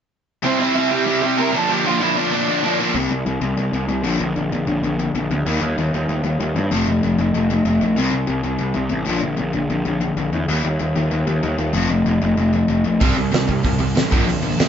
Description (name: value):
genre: punk rock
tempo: 191 BPM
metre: 4/4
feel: straight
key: unclear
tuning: A4 = 441 Hz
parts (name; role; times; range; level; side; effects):
- bluesy overdriven lead guitar; melody; 0.4-2.8 s; C4 to Bb5; -21 LUFS; right 4 dB; distortion
- distorted electric guitar; riff; 0.4-2.9, 13.0-14.7 s; Bb2 to C4; -22 LUFS; right 8 dB; distortion
- raw garage guitar; riff; 0.4-14.7 s; Bb2 to E4; -20 LUFS; left 3 dB; overdrive
- fuzz picked electric bass; bass; 2.9-14.7 s; F1 to G2; -22 LUFS; right 1 dB; overdrive
- loose indie drum kit; drums; 13.0-14.7 s; hi-hat, kick drum, snare drum; -18 LUFS; right 2 dB; none
room: light reverb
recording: band playing live in one room, nothing above 7.8 kHz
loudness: -17 LUFS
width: side -8 dB against mid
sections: 0.4-2.9 A section; 2.9-14.7 B section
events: none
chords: 0.4 C; 1.5 Bb; 2.9 C5; 4.0 Bb; 5.5 Eb; 6.7 F; 8.0 C5; 9.1 Bb; 10.5 Eb; 11.7 F; 13.0 C5; 14.1 Bb